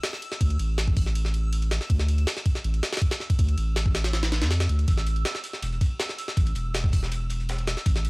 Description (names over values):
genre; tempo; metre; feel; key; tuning
drum and bass, jungle; 161 BPM; 4/4; straight; unclear; A4 = 440 Hz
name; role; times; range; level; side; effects
jungle sampler-style drum kit; drums; 0.0-8.1 s; hi-hat, kick drum, ride cymbal, snare drum; -25 LUFS; equal; small room ambience
backwards swelling texture; texture; 0.0-8.1 s; E6; -41 LUFS; right 2 dB; built-in reverb
saturated sub bass; bass; 0.4-8.1 s; E1 to F2; -24 LUFS; equal; none
crunchy breakbeat drum kit; drums; 4.9-8.1 s; hi-hat, snare drum; -40 LUFS; equal; high-pass filter on hats, small room ambience, high-pass filter on snare, high-pass filter on room
room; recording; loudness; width
little or no reverb; dry, gritty hardware recording, vinyl crackle; -23 LUFS; side -26 dB against mid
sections
0.0-8.1 A section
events
none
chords
0.0 Dsus2; 4.9 A5